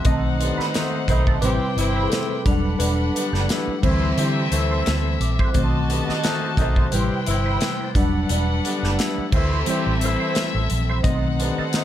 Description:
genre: lush 1970s-style soul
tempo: 87 BPM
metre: 4/4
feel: swing 54% on 16ths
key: E minor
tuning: A4 = 439 Hz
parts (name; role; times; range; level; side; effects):
- tine electric piano; accompaniment; 0.0-11.8 s; C3 to D#5; -26 LUFS; left 1 dB; medium stereo tremolo
- electric guitar through a small old amp; riff; 0.0-11.8 s; G3 to D#5; -32 LUFS; right 7 dB; wah, spring reverb
- modern studio drum kit; drums; 0.0-11.8 s; crash cymbal, hi-hat, kick drum, snare drum; -24 LUFS; equal; none
- glockenspiel with rubber mallets; texture; 0.0-8.5 s; B5 to A6; -37 LUFS; left 1 dB; none
- warm chamber violin section; second line; 0.1-11.8 s; C4 to A5; -28 LUFS; left 2 dB; none
- vintage muted fingered electric bass; bass; 0.1-11.6 s; E1 to D3; -23 LUFS; equal; none
- mellow horn section; stabs; 0.4-11.8 s; D3 to G4; -28 LUFS; left 2 dB; none
room: small room ambience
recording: none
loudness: -19 LUFS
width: side -11 dB against mid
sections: 0.0-11.8 A section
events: tine electric piano solo 0.0-11.8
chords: 0.0 B7b9; 1.4 Am9; 2.5 Em9; 3.8 D9sus4; 5.5 B7b9; 6.9 Am9; 8.0 Em9; 9.3 D9sus4; 11.0 B7b9

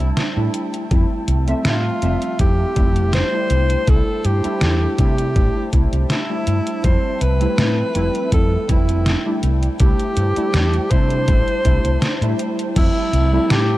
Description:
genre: vaporwave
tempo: 81 BPM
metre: 4/4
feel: swing 53% on 16ths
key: C major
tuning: A4 = 441 Hz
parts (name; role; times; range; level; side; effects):
- breathy alto saxophone; melody; 0.0-13.8 s; E4 to C5; -23 LUFS; equal; tape echo
- warbly lo-fi synth keys; accompaniment; 0.0-13.8 s; G3 to E5; -24 LUFS; equal; ensemble chorus, analog delay
- warbly tape-like pad; sustained chords; 0.0-13.8 s; F3 to A5; -31 LUFS; equal; chorus, built-in reverb, vintage 12-bit sampler grit
- woody fretless electric bass; bass; 0.0-13.7 s; F1 to C3; -18 LUFS; equal; none
- detuned 8-bit digital drum machine; drums; 0.0-13.7 s; crash cymbal, hi-hat, snare drum; -23 LUFS; equal; none
- electronic kick drum; drums; 0.9-12.9 s; none; -17 LUFS; equal; none
room: little or no reverb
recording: cassette tape, lossy compression artefacts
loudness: -15 LUFS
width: side -16 dB against mid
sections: 0.0-12.8 A section; 12.8-13.8 B section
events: none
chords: 0.0 C6; 0.9 Fmaj9; 3.5 C6; 6.8 Fmaj9; 9.4 C6; 12.8 Fmaj9

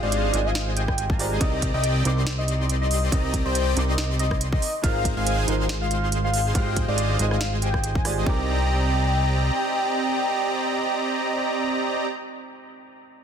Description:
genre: future bass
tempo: 140 BPM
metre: 4/4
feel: swing 55% on 16ths, half-time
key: C minor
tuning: A4 = 440 Hz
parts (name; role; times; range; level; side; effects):
- warm velvety synth lead; melody; 0.0-12.1 s; C5 to Bb5; -29 LUFS; left 1 dB; chorus, tremolo, sidechain pumping, dub echo
- warm grand piano; accompaniment; 0.0-13.2 s; C3 to D6; -33 LUFS; right 4 dB; sidechain pumping, dub echo
- big bright polysynth; riff; 0.0-12.1 s; Ab3 to C6; -27 LUFS; right 1 dB; cassette tape, sidechain pumping, dub echo
- fat analog bass; bass; 0.0-9.5 s; Ab1 to C2; -24 LUFS; equal; sidechain pumping
- trap drum kit; drums; 0.1-8.1 s; hi-hat, rim click, snare drum; -29 LUFS; right 3 dB; small room ambience
- electronic kick drum; drums; 0.9-8.4 s; none; -25 LUFS; equal; small room ambience
room: light reverb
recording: dense, heavily limited modern master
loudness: -21 LUFS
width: side -8 dB against mid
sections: 0.0-8.3 A section; 8.3-11.7 B section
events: drop 0.0-8.3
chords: 0.0 Fm7/Ab; 1.4 Cm7; 4.6 Ab6; 6.6 Fm7/Ab; 8.3 Cm7

